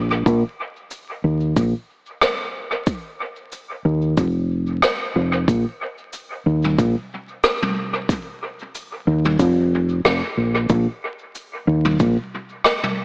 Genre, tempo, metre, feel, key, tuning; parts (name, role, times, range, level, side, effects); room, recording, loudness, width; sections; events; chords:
ambient dub; 92 BPM; 4/4; swing 56% on 16ths; A4 = 439 Hz
fingered electric bass; bass; 0.0-12.2 s; F1 to Eb2; -17 LUFS; equal
electronic kick drum; drums; 0.3-12.1 s; -20 LUFS; equal
jazz brush drum kit; drums; 0.3-12.9 s; cabasa, rim click, toms; -21 LUFS; equal; dub echo
moderate lush hall reverb, RT60 2.5 s; dreamy mix soaked in reverb, vinyl crackle, AM radio sound; -18 LUFS; side -26 dB against mid
0.0-13.0 A section